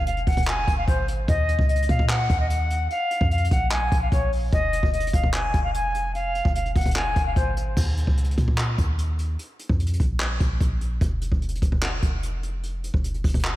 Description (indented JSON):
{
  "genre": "hip hop, trap",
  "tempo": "148 BPM",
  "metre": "4/4",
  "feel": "half-time",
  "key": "F phrygian",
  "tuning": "A4 = 440 Hz",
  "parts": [
    { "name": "reedy silver concert flute", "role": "melody", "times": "0.0-7.5 s", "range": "C5 to Ab5", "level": "-26 LUFS", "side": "left 1 dB", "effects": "low-pass filter, analog delay" },
    { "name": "clean 808-style bass", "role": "bass", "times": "0.0-13.6 s", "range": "F1 to Bb2", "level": "-25 LUFS", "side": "equal", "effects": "none" },
    { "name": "jazz brush drum kit", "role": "drums", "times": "0.1-13.5 s", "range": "crash cymbal, handclaps, hi-hat, kick drum", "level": "-24 LUFS", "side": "equal", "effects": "none" }
  ],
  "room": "light reverb, studio reverb",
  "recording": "none",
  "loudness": "-21 LUFS",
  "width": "side -15 dB against mid",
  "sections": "0.0-7.8 A section; 7.8-13.6 B section",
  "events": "none",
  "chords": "0.0 Fm; 1.3 Ebm; 2.9 Bb5; 4.5 Fm; 7.8 Eb5; 9.4 Bb5; 11.0 N.C."
}